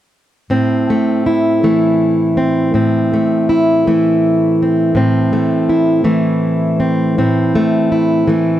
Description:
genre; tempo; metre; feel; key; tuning
acoustic country blues, solo or duo; 54 BPM (dotted quarters); 12/8; straight; A minor; A4 = 439 Hz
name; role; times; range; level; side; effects
fingerpicked plugged-in steel-string acoustic guitar; solo; 0.5-8.6 s; A2 to E4; -11 LUFS; equal; none
room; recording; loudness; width
studio reverb; dry, close 1970s-style studio recording; -12 LUFS; side -12 dB against mid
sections
0.5-8.6 A section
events
none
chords
0.5 Am

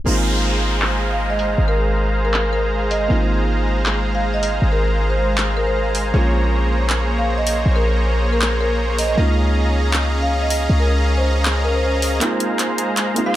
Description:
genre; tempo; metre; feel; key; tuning
future bass; 158 BPM; 4/4; half-time; Ab major; A4 = 440 Hz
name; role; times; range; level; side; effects
dark baby grand piano; accompaniment; 0.0-13.4 s; Ab3 to F4; -27 LUFS; right 2 dB; digital delay
warm 808-style bass; bass; 0.0-12.2 s; Ab1 to Db2; -19 LUFS; equal; none
supersaw chords; riff; 0.1-13.4 s; Ab3 to C6; -22 LUFS; equal; low-pass filter
trap drum kit; drums; 0.1-13.2 s; crash cymbal, handclaps, hi-hat; -23 LUFS; equal; overdrive, high-pass filter on hats, low-pass filter on hats, high-pass filter on snare, low-pass filter on snare, high-pass filter on cymbals, low-pass filter on cymbals
downlifter and riser; sound effects; 0.1-3.1, 12.2-13.4 s; none; -27 LUFS; equal; none
marimba with soft mallets; melody; 1.1-13.4 s; Bb4 to F5; -24 LUFS; equal; digital delay
room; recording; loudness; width
light reverb, digital ambience; tape stop; -16 LUFS; side -13 dB against mid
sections
0.1-12.2 A section; 12.2-13.4 B section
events
filter sweep on supersaw synth 0.1-12.2; build-up 12.2-13.4; drum fill 12.2-13.4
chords
0.1 Ab69; 6.1 Bbm9; 9.2 Db69; 12.2 Ab69

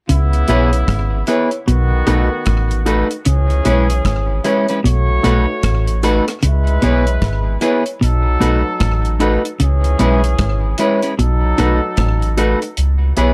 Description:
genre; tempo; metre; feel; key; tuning
roots reggae; 76 BPM; 4/4; swing 62% on 16ths; C# minor; A4 = 435 Hz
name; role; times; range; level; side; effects
warm horn section; second line; 0.1-12.4 s; C#3 to C#5; -25 LUFS; equal; tape echo
clean electric guitar; riff; 0.1-12.2 s; G#2 to C#3; -22 LUFS; equal; none
soft dub sub bass; bass; 0.1-13.3 s; G#1 to C#2; -18 LUFS; equal; none
deep reggae drum kit; drums; 0.1-13.3 s; hi-hat, kick drum, rim click; -25 LUFS; equal; none
clean electric guitar; accompaniment; 0.5-13.3 s; G#3 to B4; -23 LUFS; equal; tape echo
warm upright piano; stabs; 0.5-13.3 s; D#4 to C#5; -22 LUFS; equal; none
room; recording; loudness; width
light reverb; dark, warm production; -16 LUFS; mono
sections
0.1-12.8 A section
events
none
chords
0.1 C#m7; 1.7 B7; 3.3 C#m7; 4.8 B7; 6.4 C#m7; 8.0 B7; 9.6 C#m7; 11.2 B7; 12.8 C#m7

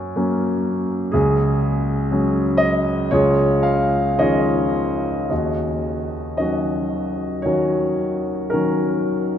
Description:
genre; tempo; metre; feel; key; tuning
classical, lyrical solo piano; 54-62 BPM; 4/4; rubato; Eb minor from 5.3 s; A4 = 440 Hz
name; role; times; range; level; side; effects
warm concert grand piano; solo; 0.0-9.4 s; C#2 to E#5; -18 LUFS; equal; none
room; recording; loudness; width
wet cathedral reverb, RT60 5.6 s; in a vast, echoing space; -18 LUFS; side -9 dB against mid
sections
0.0-5.3 A section; 5.3-9.4 B section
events
none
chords
0.0 F#; 1.1 C#sus4; 3.1 C#add9; 5.3 Ebm7

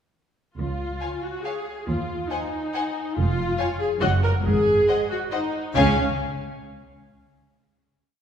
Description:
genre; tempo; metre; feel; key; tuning
cinematic, playful, whimsical film cue; 139 BPM; 3/4; straight; Db major; A4 = 440 Hz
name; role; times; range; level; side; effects
rich studio viola section; accompaniment; 0.6-6.0 s; Db4 to Bb4; -25 LUFS; equal; none
warm studio cello section; bass; 0.6-6.0 s; Db2 to Db3; -28 LUFS; right 1 dB; none
warm studio double bass section; bass; 0.6-6.0 s; F1 to Eb2; -27 LUFS; right 2 dB; none
dark studio violin section; melody; 1.0-6.0 s; Gb5 to Ab5; -31 LUFS; left 5 dB; none
warm studio violin section; second line; 1.0-6.0 s; C5 to Gb5; -30 LUFS; left 4 dB; none
room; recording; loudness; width
wet scoring stage reverb, RT60 1.9 s; heard from further back in the room; -21 LUFS; side -8 dB against mid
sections
0.6-5.8 A section; 5.8-7.1 final chord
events
none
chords
0.6 Db; 1.9 N.C.; 4.0 Ebm/Gb (rootless); 4.5 Ab5; 5.8 N.C.

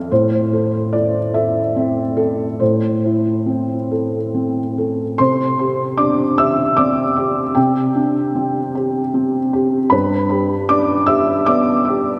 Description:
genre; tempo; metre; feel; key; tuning
neoclassical minimalist piano; 46-53 BPM (dotted quarters); 6/8; rubato; C major; A4 = 442 Hz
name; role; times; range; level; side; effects
felt-muted upright piano; solo; 0.0-12.2 s; G2 to E6; -17 LUFS; equal; delay
room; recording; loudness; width
wet lush hall reverb, RT60 2.9 s; dreamy mix soaked in reverb; -17 LUFS; mono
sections
0.0-5.2 A section; 5.2-12.2 A section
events
none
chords
0.1 Am; 5.2 Csus2; 9.9 G

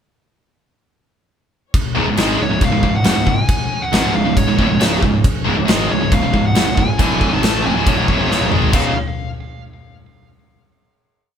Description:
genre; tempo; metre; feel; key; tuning
heavy metal; 138 BPM; 4/4; straight; unclear; A4 = 440 Hz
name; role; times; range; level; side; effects
dark chamber string section; sustained chords; 1.7-8.9 s; E#3 to C#5; -31 LUFS; right 3 dB; none
big rock drum kit; drums; 1.7-8.8 s; crash cymbal, kick drum, snare drum, toms; -18 LUFS; left 1 dB; none
heavy high-gain guitar; riff; 1.9-8.9 s; C#2 to A3; -20 LUFS; right 6 dB; distortion
cranked stack guitar; riff; 2.0-8.9 s; C#2 to A3; -24 LUFS; equal; none
scooped high-gain guitar; riff; 2.0-8.9 s; C#2 to A3; -21 LUFS; left 6 dB; distortion
fuzz picked electric bass; bass; 2.0-8.9 s; C#1 to A1; -23 LUFS; equal; overdrive
high-gain lead guitar; melody; 2.4-8.9 s; C#5 to A5; -23 LUFS; left 1 dB; distortion, ping-pong delay
room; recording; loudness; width
moderate studio reverb, RT60 0.7 s; band playing live in one room; -13 LUFS; side -8 dB against mid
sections
1.7-8.7 riff; 8.7-10.5 final chord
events
drum fill 8.3-8.7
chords
1.7 C#; 8.7 C#5

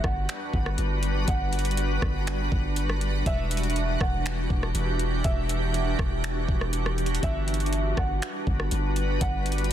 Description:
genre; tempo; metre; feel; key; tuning
hip hop, atmospheric cloud-rap; 121 BPM; 4/4; half-time; G major; A4 = 440 Hz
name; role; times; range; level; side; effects
felt-muted upright piano; melody; 0.0-9.7 s; E5 to F#5; -36 LUFS; right 2 dB; digital delay
shimmering ambient pad; sustained chords; 0.0-9.7 s; E3 to B4; -30 LUFS; right 1 dB; chorus, built-in reverb, sidechain pumping
long sustained 808-style bass; bass; 0.0-9.7 s; E1 to G1; -27 LUFS; equal; none
smooth R&B drum kit; drums; 0.0-9.7 s; finger snaps, hi-hat, kick drum, rim click; -29 LUFS; equal; soft clipping on snare
room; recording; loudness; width
little or no reverb; dense, heavily limited modern master; -24 LUFS; side -11 dB against mid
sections
0.0-9.7 A section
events
none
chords
0.0 Gmaj7; 3.3 Em9; 7.2 Gmaj7

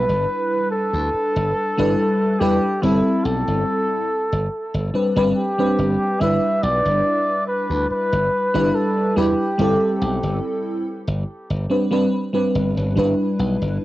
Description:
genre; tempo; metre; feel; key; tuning
vaporwave; 71 BPM; 4/4; straight; G major; A4 = 441 Hz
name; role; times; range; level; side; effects
breathy flugelhorn; melody; 0.0-10.4 s; E4 to E5; -22 LUFS; equal; cassette tape, tape echo
FM electric piano with soft pad layer; accompaniment; 0.0-13.8 s; G3 to B4; -20 LUFS; equal; analog chorus, cassette tape
glassy slap bass; bass; 0.0-13.8 s; G1 to E2; -23 LUFS; equal; none
room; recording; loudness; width
wet booth ambience, RT60 0.2 s; home recording on cassette; -18 LUFS; side -16 dB against mid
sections
0.0-13.8 A section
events
none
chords
0.0 G6; 2.8 C6/G; 4.1 Am11/G; 6.2 G6; 9.6 C6/G; 10.9 Gadd11; 13.0 G6

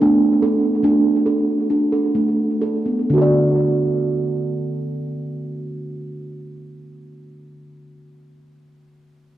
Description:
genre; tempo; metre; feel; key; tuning
world meditative; 122-150 BPM (eighths); 7/8; straight; D major pentatonic; A4 = 440 Hz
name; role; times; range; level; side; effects
steel tongue drum; arpeggios; 0.0-7.7 s; D3 to D5; -17 LUFS; right 1 dB; cassette tape, analog delay
room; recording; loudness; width
moderate lush hall reverb, RT60 2.2 s; home recording on cassette; -16 LUFS; side -13 dB against mid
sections
0.0-3.1 A section; 3.1-6.5 B section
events
slowing down 0.0-3.1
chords
0.0 Asus4; 3.1 D

